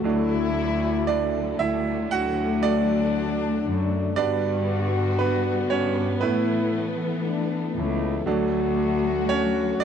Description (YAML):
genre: pop ballad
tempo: 58 BPM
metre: 4/4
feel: straight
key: D major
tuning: A4 = 444 Hz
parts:
  - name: clear French horn section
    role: second line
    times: 0.0-9.8 s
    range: D4 to F#4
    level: -28 LUFS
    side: left 7 dB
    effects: none
  - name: bright grand piano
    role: accompaniment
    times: 0.0-9.8 s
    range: F#3 to F#5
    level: -27 LUFS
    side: right 8 dB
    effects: none
  - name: warm symphonic string section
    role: sustained chords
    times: 0.0-9.8 s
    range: D3 to B3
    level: -29 LUFS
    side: left 3 dB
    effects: stereo widening
  - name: warm chamber cello section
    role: bass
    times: 0.0-9.8 s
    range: C#2 to A2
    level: -26 LUFS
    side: equal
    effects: none
room: light reverb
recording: dry, close 1970s-style studio recording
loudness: -21 LUFS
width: side -8 dB against mid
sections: 0.0-9.8 A section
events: grand piano solo 0.0-9.8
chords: 0.0 D; 4.2 G; 6.2 Asus2; 8.3 D